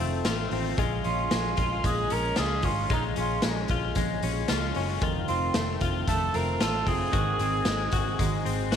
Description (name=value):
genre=jangly indie pop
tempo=114 BPM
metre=4/4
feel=straight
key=Bb minor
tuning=A4 = 440 Hz
part: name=picked steel-string acoustic guitar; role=accompaniment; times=0.0-8.8 s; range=F2 to Ab4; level=-34 LUFS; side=right 11 dB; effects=none
part: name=direct-recorded clean electric guitar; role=arpeggios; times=0.0-8.8 s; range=Eb3 to Gb4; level=-31 LUFS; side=left 12 dB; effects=analog chorus, slapback echo
part: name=vintage muted fingered electric bass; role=bass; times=0.0-8.8 s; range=F1 to Db2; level=-31 LUFS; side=equal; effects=none
part: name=raw garage drum kit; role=drums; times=0.2-8.8 s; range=hi-hat, kick drum, snare drum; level=-30 LUFS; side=equal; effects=none
part: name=mellow cor anglais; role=melody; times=1.0-8.7 s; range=Eb4 to Bb4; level=-30 LUFS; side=right 3 dB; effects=slapback echo
room=light reverb, small room ambience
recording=1960s-style stereo with parts hard left and right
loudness=-24 LUFS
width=side -8 dB against mid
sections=0.0-8.8 A section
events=none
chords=0.0 F7; 0.8 Bbm7; 5.0 F7; 7.1 Ab7